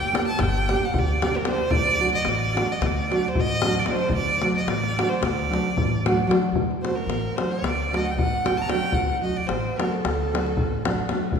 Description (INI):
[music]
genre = balkan folk, Balkan wedding band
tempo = 224 BPM (eighths)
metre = 9/8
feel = straight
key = D phrygian dominant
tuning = A4 = 436 Hz
[part]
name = rich violin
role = melody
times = 0.0-11.2 s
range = A4 to Bb5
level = -26 LUFS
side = right 2 dB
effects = none
[part]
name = upright bass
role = bass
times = 0.0-11.4 s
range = G1 to D2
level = -29 LUFS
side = equal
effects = none
[part]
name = nylon-string guitar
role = accompaniment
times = 0.1-11.3 s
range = F#3 to G4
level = -26 LUFS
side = right 1 dB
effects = none
[part]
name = davul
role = percussion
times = 0.1-11.4 s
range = none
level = -26 LUFS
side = left 2 dB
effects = none
[sound]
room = wet concert hall reverb, RT60 2.2 s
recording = recorded in a church or concert hall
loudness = -21 LUFS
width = side -6 dB against mid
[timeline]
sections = 0.0-6.5 A section; 6.5-11.4 B section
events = violin solo 6.5-11.4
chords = 0.0 Gm; 1.7 D